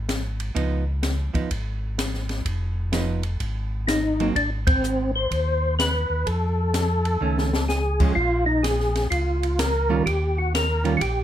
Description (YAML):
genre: soul jazz organ trio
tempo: 126 BPM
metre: 4/4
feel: swing 66% on 8ths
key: unclear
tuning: A4 = 440 Hz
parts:
  - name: mellow tonewheel organ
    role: bass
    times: 0.0-11.2 s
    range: F1 to F2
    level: -25 LUFS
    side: equal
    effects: slow rotary speaker
  - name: open jazz drum kit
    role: drums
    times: 0.1-11.2 s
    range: crash cymbal, hi-hat, kick drum, ride cymbal, snare drum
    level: -27 LUFS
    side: left 1 dB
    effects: none
  - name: hollow-body jazz guitar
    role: accompaniment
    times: 0.5-4.3, 7.2-11.0 s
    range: Eb3 to F4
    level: -25 LUFS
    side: right 6 dB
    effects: none
  - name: percussive tonewheel organ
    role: melody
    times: 3.9-11.2 s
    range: C4 to C5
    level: -24 LUFS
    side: left 1 dB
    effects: slow rotary speaker, chorus vibrato
room: light reverb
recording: none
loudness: -21 LUFS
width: side -11 dB against mid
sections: 0.0-11.2 A section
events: band accent 4.6; drum fill 7.2-7.7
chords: 0.0 N.C.; 0.6 Db9; 4.4 Ab; 6.3 F7alt; 8.2 Eb9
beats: 0.08 | 0.55 1.03 1.50 1.98 | 2.46 2.93 3.41 3.88 | 4.36 4.83 5.31 5.79 | 6.26 6.74 7.21 7.69 | 8.16 8.64 9.11 9.59 | 10.06 10.54 11.01